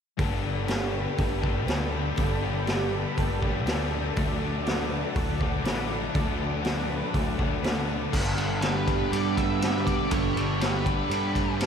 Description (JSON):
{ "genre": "rock, shoegaze and dream pop", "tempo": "121 BPM", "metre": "4/4", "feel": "straight", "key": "unclear", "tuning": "A4 = 440 Hz", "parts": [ { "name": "lush unison pad", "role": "sustained chords", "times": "0.2-11.7 s", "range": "D4 to D6", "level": "-36 LUFS", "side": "right 1 dB", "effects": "chorus" }, { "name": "fingerpicked twelve-string acoustic guitar", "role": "arpeggios", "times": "0.2-11.7 s", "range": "F#4 to B4", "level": "-36 LUFS", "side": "right 3 dB", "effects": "analog chorus, tape echo" }, { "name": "crunchy overdriven guitar", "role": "riff", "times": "0.2-11.7 s", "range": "G2 to D4", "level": "-31 LUFS", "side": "left 7 dB", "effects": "lush chorus" }, { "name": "electric guitar through a small old amp", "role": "riff", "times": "0.2-11.7 s", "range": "D3 to A4", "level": "-36 LUFS", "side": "right 9 dB", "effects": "none" }, { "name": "fuzz picked electric bass", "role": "bass", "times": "0.2-11.7 s", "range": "G1 to G2", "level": "-30 LUFS", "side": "equal", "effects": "overdrive" }, { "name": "raw garage drum kit", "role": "drums", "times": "0.2-11.7 s", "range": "crash cymbal, hi-hat, kick drum, ride cymbal, snare drum", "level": "-29 LUFS", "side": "equal", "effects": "none" }, { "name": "octave-fuzz lead guitar", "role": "melody", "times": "8.6-11.6 s", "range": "B4 to E5", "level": "-32 LUFS", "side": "left 1 dB", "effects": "distortion, tape echo" } ], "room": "moderate huge ambient reverb, RT60 7.6 s", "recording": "dreamy mix soaked in reverb", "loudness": "-24 LUFS", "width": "side -7 dB against mid", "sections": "0.2-8.1 A section; 8.1-11.7 B section", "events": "none", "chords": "0.2 Gadd9; 4.2 D; 8.1 Gadd9", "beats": "| 0.19 0.69 1.18 1.68 | 2.18 2.67 3.17 3.67 | 4.16 4.66 5.16 5.65 | 6.15 6.64 7.14 7.63 | 8.13 8.62 9.12 9.61 | 10.11 10.60 11.10 11.59" }